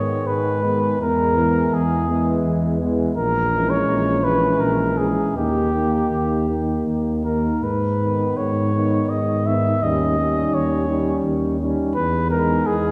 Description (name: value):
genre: classical, hymn-like piece for brass band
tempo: 78-86 BPM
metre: 3/4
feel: rubato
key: G# minor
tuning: A4 = 441 Hz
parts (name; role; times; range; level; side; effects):
- mellow cornet; melody; 0.0-12.9 s; G4 to E5; -25 LUFS; equal; none
- mellow French horn section; second line; 0.0-12.9 s; B3 to D#4; -30 LUFS; equal; none
- clear trombone; accompaniment; 0.0-12.9 s; D#3 to G#3; -30 LUFS; equal; none
- clear trombone section; accompaniment; 0.0-12.9 s; G#3 to C#4; -29 LUFS; equal; none
- mellow tuba; bass; 0.0-12.9 s; A#1 to G#2; -25 LUFS; equal; none
room: wet concert hall reverb, RT60 2.1 s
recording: heard from further back in the room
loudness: -20 LUFS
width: mono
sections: 0.0-12.9 A section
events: none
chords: 0.0 G#m; 1.0 E; 3.2 A#m7b5; 5.4 D#; 7.6 G#m; 9.8 D#7; 12.0 Emaj7